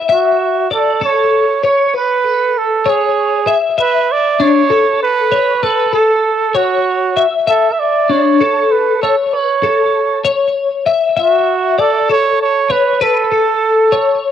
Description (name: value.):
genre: rock.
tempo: 65 BPM (dotted quarters).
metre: 6/8.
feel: straight.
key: A major.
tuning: A4 = 440 Hz.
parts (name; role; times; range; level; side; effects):
twelve-string electric guitar; arpeggios; 0.0-14.3 s; D4 to E5; -14 LUFS; left 6 dB; ensemble chorus, tape echo.
breathy trumpet; melody; 0.1-14.2 s; F#4 to E5; -14 LUFS; right 6 dB; none.
room: moderate studio reverb, RT60 0.6 s.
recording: home recording on cassette.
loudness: -11 LUFS.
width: side -9 dB against mid.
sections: 0.1-14.3 A section.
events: none.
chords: 0.1 Dmaj7; 1.9 Amaj9; 3.8 Bm9; 5.6 F#m7; 7.5 D5; 9.3 Aadd9; 11.2 F#m7; 13.0 Aadd9.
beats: | 0.10 1.02 | 1.95 2.87 | 3.79 4.72 | 5.64 6.57 | 7.49 8.41 | 9.34 10.26 | 11.18 12.10 | 13.02 13.93.